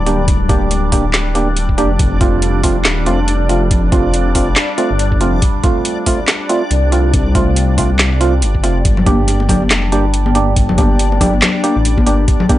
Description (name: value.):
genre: deep dubstep.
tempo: 140 BPM.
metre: 4/4.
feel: swing 58% on 16ths, half-time.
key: unclear.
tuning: A4 = 441 Hz.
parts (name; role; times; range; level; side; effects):
overtone-sweeping drone; sustained chords; 0.0-12.6 s; G3 to D4; -22 LUFS; left 3 dB; chorus, built-in reverb, phaser.
dark detuned saw bass; bass; 0.0-12.3 s; D1 to C2; -15 LUFS; equal; none.
backwards swelling texture; texture; 0.0-12.6 s; D4 to D5; -25 LUFS; left 1 dB; built-in reverb.
percussive organ stab; stabs; 0.1-12.6 s; A3 to G4; -18 LUFS; right 2 dB; lush chorus, dub echo.
garage drum kit; drums; 0.1-12.6 s; handclaps, hi-hat, snare drum; -17 LUFS; equal; overdrive, small room ambience.
electronic kick drum; drums; 0.3-12.6 s; none; -15 LUFS; equal; small room ambience.
congas; percussion; 9.0-12.6 s; none; -18 LUFS; left 3 dB; dub echo.
room: digital ambience.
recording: dry, gritty hardware recording, nothing above 10.3 kHz.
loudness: -11 LUFS.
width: side -14 dB against mid.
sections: 0.0-12.6 A section.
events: none.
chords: 0.0 Gm; 2.0 F; 8.8 Gm.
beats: | 0.28 0.71 1.14 1.56 | 1.99 2.42 2.85 3.28 | 3.71 4.14 4.56 4.99 | 5.42 5.85 6.28 6.71 | 7.14 7.56 7.99 8.42 | 8.85 9.28 9.71 10.14 | 10.56 10.99 11.42 11.85 | 12.28.